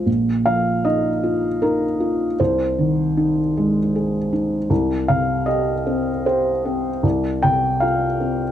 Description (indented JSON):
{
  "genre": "neoclassical minimalist piano",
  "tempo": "77 BPM",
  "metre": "3/4",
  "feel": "rubato",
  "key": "C minor",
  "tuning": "A4 = 438 Hz",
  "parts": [
    { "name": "felt-muted upright piano", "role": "solo", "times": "0.0-8.5 s", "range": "Bb1 to G5", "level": "-17 LUFS", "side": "equal", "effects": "none" }
  ],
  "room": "light reverb",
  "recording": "dark, warm production",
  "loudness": "-17 LUFS",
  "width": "side -10 dB against mid",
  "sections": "0.0-8.5 A section",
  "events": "none",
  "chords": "0.1 Bbsus4; 2.4 Ab/C; 4.7 Cm; 7.0 F5/C"
}